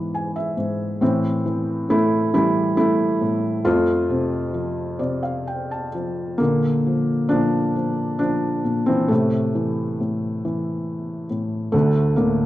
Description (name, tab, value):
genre	classical, lyrical solo piano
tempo	68 BPM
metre	3/4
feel	rubato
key	unclear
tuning	A4 = 440 Hz
part	felt-muted upright piano	solo	0.0-12.5 s	D2 to A5	-19 LUFS	equal	none
room	light reverb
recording	dark, warm production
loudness	-19 LUFS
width	side -15 dB against mid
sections	0.0-12.5 A section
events	felt piano fill 0.0-1.0, 4.5-6.4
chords	0.0 E/G#; 1.0 Am; 3.7 F; 6.4 Bb; 9.1 Am; 11.7 D5